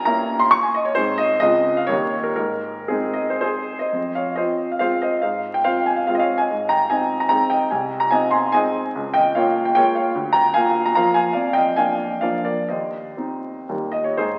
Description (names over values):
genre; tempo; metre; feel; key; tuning
classical, romantic triple-time dance for piano with dotted rhythms; 110-161 BPM; 3/4; rubato; Ab major, F minor from 3.9 s; A4 = 441 Hz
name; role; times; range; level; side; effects
warm baby grand piano; solo; 0.0-14.4 s; C2 to Db6; -20 LUFS; equal; none
room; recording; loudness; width
wet scoring stage reverb, RT60 1.9 s; very old 78 rpm record, vinyl crackle; -20 LUFS; mono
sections
0.0-3.9 A section; 3.9-14.2 B section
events
none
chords
0.0 Gdim7; 0.9 Ab; 1.4 Dbmaj7; 1.9 Eb7; 2.4 Ab; 3.9 Fm; 5.2 Fm/Ab; 6.5 Ab; 7.7 Ab/C; 9.0 Bbm7/Db; 10.1 Bb/D; 11.4 Bb7/F; 12.7 Cm/Eb; 13.7 Eb